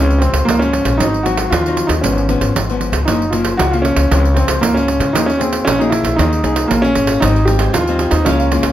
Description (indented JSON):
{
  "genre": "samba and choro",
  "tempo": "116 BPM",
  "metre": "4/4",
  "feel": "straight",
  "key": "Ab major",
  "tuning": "A4 = 440 Hz",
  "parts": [
    { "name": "warm grand piano", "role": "melody", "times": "0.0-8.7 s", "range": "Bb3 to G4", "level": "-16 LUFS", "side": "equal", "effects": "plate reverb" },
    { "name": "nylon-string guitar", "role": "accompaniment", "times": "0.0-8.7 s", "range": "Gb2 to Ab4", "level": "-21 LUFS", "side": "left 5 dB", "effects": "none" },
    { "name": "upright bass", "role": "bass", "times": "0.0-8.7 s", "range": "Gb1 to Db3", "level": "-18 LUFS", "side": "equal", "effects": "none" },
    { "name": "pandeiro", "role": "percussion", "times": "0.1-8.7 s", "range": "none", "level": "-20 LUFS", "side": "right 5 dB", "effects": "none" },
    { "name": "cavaquinho", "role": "accompaniment", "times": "7.2-8.5 s", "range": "F4 to Ab5", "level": "-26 LUFS", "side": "right 6 dB", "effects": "none" }
  ],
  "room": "moderate large studio reverb, RT60 0.9 s",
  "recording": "none",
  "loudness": "-12 LUFS",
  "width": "side -12 dB against mid",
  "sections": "0.0-8.7 A section",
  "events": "none",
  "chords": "0.0 Dbmaj7; 1.0 Ab7; 2.0 Db7/Ab; 3.1 Gbmaj7; 4.1 Dbmaj7; 5.1 Eb7sus4; 7.2 Abmaj7",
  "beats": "0.48 | 1.00 1.52 2.04 2.56 | 3.08 3.59 4.11 4.63 | 5.15 5.67 6.19 6.71 | 7.22 7.74 8.26"
}